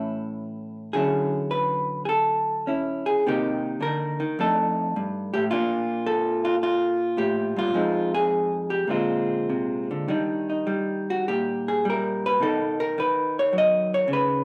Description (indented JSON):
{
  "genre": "solo jazz",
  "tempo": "106 BPM",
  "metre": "4/4",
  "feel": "swing 69% on 8ths, rubato",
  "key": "Eb major from 10.1 s",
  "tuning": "A4 = 440 Hz",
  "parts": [
    { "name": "vintage hollow-body jazz guitar", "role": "solo", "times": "0.0-14.4 s", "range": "F2 to D#5", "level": "-25 LUFS", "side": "equal", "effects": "none" }
  ],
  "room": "moderate large studio reverb, RT60 0.8 s",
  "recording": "band playing live in one room",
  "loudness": "-25 LUFS",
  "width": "mono",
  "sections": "0.0-10.1 A section; 10.1-14.4 B section",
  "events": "hollow-body jazz guitar solo 10.1-14.4",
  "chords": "0.0 A7; 0.9 Dmaj9#11; 3.3 Cm7; 4.4 F13; 5.5 Bbmaj7; 7.7 Fm7; 8.9 Bb9; 10.1 Ebmaj7; 12.4 Badd9",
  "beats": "0.35 | 0.94 1.52 2.10 2.67 | 3.25 3.82 4.38 4.95 | 5.51 6.07 6.62 7.18 | 7.74 8.30 8.88 9.48 | 10.08 10.67 11.26 11.84 | 12.40 12.97 13.53 14.09"
}